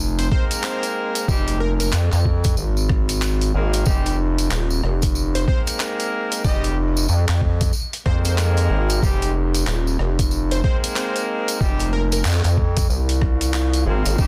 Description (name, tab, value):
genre	glitch hop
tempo	93 BPM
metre	4/4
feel	swing 61% on 16ths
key	F minor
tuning	A4 = 439 Hz
part	gritty driven synth bass	bass	0.0-14.3 s	Eb1 to F2	-22 LUFS	equal	none
part	plucky unison lead	melody	0.2-12.2 s	Bb4 to Eb5	-33 LUFS	equal	tape echo
part	boom bap sampler-style drum kit	drums	0.2-14.2 s	handclaps, hi-hat, rim click	-31 LUFS	equal	overdrive
part	tambourine	percussion	0.2-14.3 s	none	-33 LUFS	equal	none
part	warm horn section	stabs	0.3-14.3 s	G3 to Bb4	-29 LUFS	equal	sidechain pumping, tape echo
part	electronic kick drum	drums	0.3-14.3 s	none	-23 LUFS	equal	overdrive
part	swell	sound effects	13.3-14.2 s	none	-38 LUFS	equal	none
room	little or no reverb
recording	dense, heavily limited modern master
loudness	-20 LUFS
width	mono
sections	0.0-14.3 A section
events	kick drops out 13.5-14.2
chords	0.0 Fm7